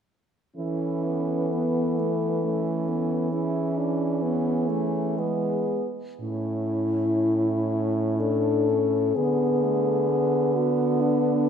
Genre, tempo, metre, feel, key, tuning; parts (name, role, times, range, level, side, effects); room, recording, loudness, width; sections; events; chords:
classical, lyrical piece for horn quartet; 55-68 BPM; 3/4; rubato; A major; A4 = 440 Hz
mellow French horn; melody; 0.6-11.5 s; D4 to A4; -28 LUFS; left 9 dB
warm French horn; second line; 0.6-11.5 s; B3 to E4; -29 LUFS; right 8 dB
dark French horn; accompaniment; 0.6-11.5 s; G#3 to E4; -27 LUFS; left 1 dB
mellow French horn; bass; 0.6-11.5 s; A2 to E3; -28 LUFS; right 2 dB
moderate scoring stage reverb, RT60 2.1 s; -22 LUFS; side -8 dB against mid
0.6-6.2 A section; 6.2-11.5 B section
0.6 A/E; 3.3 E; 6.2 A; 9.2 D6